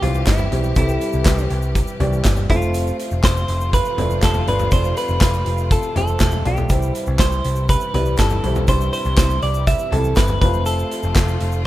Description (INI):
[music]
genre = piano-driven pop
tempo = 121 BPM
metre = 4/4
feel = straight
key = C major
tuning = A4 = 439 Hz
[part]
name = direct-recorded clean electric guitar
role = melody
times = 0.0-11.6 s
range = E4 to E5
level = -23 LUFS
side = equal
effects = lush chorus
[part]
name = felt-muted upright piano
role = accompaniment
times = 0.0-11.7 s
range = C3 to D5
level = -26 LUFS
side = equal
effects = none
[part]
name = warm studio string section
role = sustained chords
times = 0.0-11.7 s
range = C3 to B4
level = -30 LUFS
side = left 1 dB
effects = none
[part]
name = picked electric bass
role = bass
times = 0.0-11.7 s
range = E1 to C2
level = -20 LUFS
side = equal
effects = none
[part]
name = loose indie drum kit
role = drums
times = 0.0-11.5 s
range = handclaps, hi-hat, kick drum, snare drum, toms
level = -19 LUFS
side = equal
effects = none
[part]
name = impact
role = sound effects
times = 0.0-0.8 s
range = none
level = barely audible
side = none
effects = none
[part]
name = tube shaker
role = percussion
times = 0.1-11.6 s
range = none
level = -40 LUFS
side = right 1 dB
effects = none
[sound]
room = light reverb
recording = rough home demo mix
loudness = -16 LUFS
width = side -15 dB against mid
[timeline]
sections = 0.0-11.7 A section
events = impact 0.0-0.8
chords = 0.0 C; 2.5 F; 6.7 C; 10.4 F